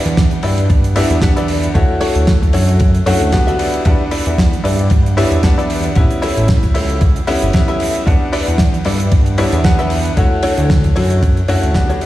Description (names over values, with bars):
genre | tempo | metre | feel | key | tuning
nu-disco, nu disco | 114 BPM | 4/4 | swing 56% on 16ths | E dorian | A4 = 440 Hz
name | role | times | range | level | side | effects
bright baby grand piano | accompaniment | 0.0-12.1 s | G3 to F#5 | -20 LUFS | left 1 dB | tape echo
direct-recorded clean electric guitar | riff | 0.0-12.1 s | D4 to E5 | -21 LUFS | left 2 dB | ensemble chorus, tape echo
fat analog bass | bass | 0.1-11.9 s | G1 to G2 | -16 LUFS | equal | tube saturation
damped 70s drum kit | drums | 0.1-12.1 s | hi-hat, ride cymbal, snare drum | -22 LUFS | right 2 dB | studio reverb
electronic kick drum | drums | 0.2-11.9 s | none | -13 LUFS | equal | studio reverb
room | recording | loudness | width
light reverb, small room ambience | played on a big sound system in a bare room, stone room reverb | -11 LUFS | side -15 dB against mid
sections
0.0-12.1 A section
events
fade-out 10.9-12.1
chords
0.0 Em7; 1.8 Dmaj7; 3.6 Em7; 6.0 A7; 8.1 Em7; 10.2 Dmaj7